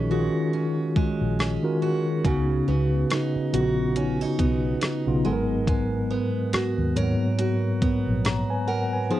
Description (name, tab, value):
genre	contemporary R&B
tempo	70 BPM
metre	4/4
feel	swing 58% on 16ths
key	unclear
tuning	A4 = 444 Hz
part	mellow tine electric piano	accompaniment	0.0-9.2 s	Ab2 to Bb5	-24 LUFS	left 1 dB	medium stereo tremolo, cassette tape
part	picked steel-string acoustic guitar	arpeggios	0.0-9.2 s	Db3 to Bb4	-29 LUFS	right 5 dB	cassette tape, analog delay, plate reverb
part	vintage muted fingered electric bass	bass	0.0-8.4 s	Ab1 to Eb2	-28 LUFS	left 1 dB	none
part	crisp 8-bit digital drum machine	drums	1.0-8.5 s	hi-hat, kick drum, rim click	-25 LUFS	left 1 dB	overdrive, cassette tape
room	moderate studio reverb, RT60 0.6 s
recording	home recording on cassette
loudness	-22 LUFS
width	side -14 dB against mid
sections	0.0-9.2 A section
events	none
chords	0.0 Ebm11; 2.2 Db9sus4; 5.2 Abm9